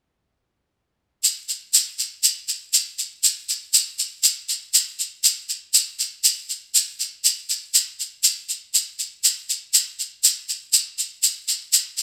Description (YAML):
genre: bossa nova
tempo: 120 BPM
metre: 4/4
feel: straight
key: none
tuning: none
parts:
  - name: tube shaker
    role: percussion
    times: 1.2-12.0 s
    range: none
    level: -19 LUFS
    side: equal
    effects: none
room: little or no reverb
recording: none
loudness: -21 LUFS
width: mono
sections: 1.2-12.0 A section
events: none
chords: none